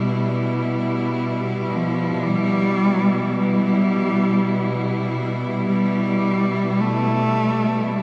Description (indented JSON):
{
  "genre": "ambient",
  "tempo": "53 BPM",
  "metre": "4/4",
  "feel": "straight",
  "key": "E minor",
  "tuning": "A4 = 439 Hz",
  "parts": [
    { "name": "warm cello", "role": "melody", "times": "0.0-8.0 s", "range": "F3 to A3", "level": "-24 LUFS", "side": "equal", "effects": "shimmer reverb, tape echo" },
    { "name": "rich symphonic cello section", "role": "sustained chords", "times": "0.0-8.0 s", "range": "B2 to E4", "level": "-24 LUFS", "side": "equal", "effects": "shimmer reverb" }
  ],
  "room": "wet cathedral reverb, RT60 6.1 s",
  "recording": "in a vast, echoing space",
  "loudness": "-21 LUFS",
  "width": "mono",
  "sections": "0.0-8.0 A section",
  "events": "none",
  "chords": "0.0 Em",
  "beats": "0.01 | 1.14 2.27 3.41 4.54 | 5.67 6.80 7.93"
}